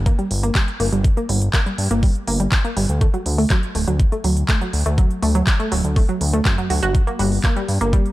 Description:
progressive house; 122 BPM; 4/4; straight; G minor; A4 = 441 Hz
fat analog bass; bass; 0.0-8.0 s; D1 to G2; -20 LUFS; equal; sidechain pumping
analog pluck; arpeggios; 0.1-8.0 s; F#2 to F#4; -22 LUFS; right 1 dB; chorus, cassette tape, sidechain pumping, digital delay
electronic kick drum; drums; 0.1-8.0 s; -17 LUFS; equal
pop drum kit; drums; 0.1-8.1 s; handclaps, hi-hat; -25 LUFS; equal; sidechain pumping on hats, sidechain pumping on cymbals
digital ambience; -16 LUFS; side -16 dB against mid
0.0-8.1 A section
filter sweep on synth pluck 0.0-8.1
0.0 Gm; 3.0 D; 6.9 Gm

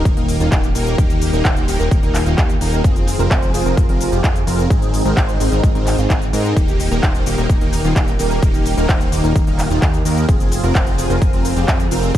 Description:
EDM, festival progressive house; 129 BPM; 4/4; straight; Eb major; A4 = 440 Hz
lush unison pad; sustained chords; 0.0-12.2 s; Eb3 to Ab4; -24 LUFS; equal; chorus, sidechain pumping
supersaw chords; riff; 0.0-12.2 s; Bb3 to C5; -22 LUFS; right 1 dB; analog chorus, sidechain pumping, digital delay
fat analog bass; bass; 0.0-12.2 s; Eb1 to Ab2; -20 LUFS; equal; tube saturation, sidechain pumping
sub drop; sound effects; 0.0-1.0 s; barely audible
big-room dance drum kit; drums; 0.1-12.2 s; handclaps, hi-hat, shaker; -24 LUFS; equal; overdrive
electronic kick drum; drums; 0.1-12.2 s; -16 LUFS; equal; overdrive
light reverb, digital ambience; dark, warm production; -14 LUFS; side -12 dB against mid
0.0-12.2 A section
impact 0.0-1.0
0.0 Eb; 2.8 Fm; 4.7 Ab; 6.6 Eb; 10.3 Fm

